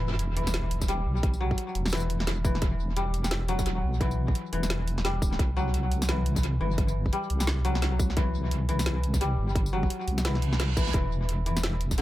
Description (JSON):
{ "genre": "half-time drum and bass", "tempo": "173 BPM", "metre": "4/4", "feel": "swing 60% on 16ths, half-time", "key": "E minor", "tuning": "A4 = 442 Hz", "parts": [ { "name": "koto", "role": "arpeggios", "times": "0.0-12.0 s", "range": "D3 to E4", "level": "-32 LUFS", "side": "left 3 dB", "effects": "vintage 12-bit sampler grit, dub echo" }, { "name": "deep soft wobble bass", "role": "bass", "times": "0.0-12.0 s", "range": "D1 to C2", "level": "-28 LUFS", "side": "equal", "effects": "chorus" }, { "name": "sub drop and reverse cymbal", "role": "sound effects", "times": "0.0-1.2, 10.4-10.9 s", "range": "none", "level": "-36 LUFS", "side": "right 2 dB", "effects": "none" }, { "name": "drum and bass drum kit", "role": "drums", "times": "0.2-12.0 s", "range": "hi-hat, snare drum, tambourine", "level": "-33 LUFS", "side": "equal", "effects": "dub echo" }, { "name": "electronic kick drum", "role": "drums", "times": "0.8-12.0 s", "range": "none", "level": "-27 LUFS", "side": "equal", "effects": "none" } ], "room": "little or no reverb", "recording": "echo-heavy mix", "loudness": "-25 LUFS", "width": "side -15 dB against mid", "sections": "0.0-12.0 A section", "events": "impact 0.0-1.2; reverse cymbal 10.4-10.9", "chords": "0.0 Em; 5.4 C; 10.9 E5" }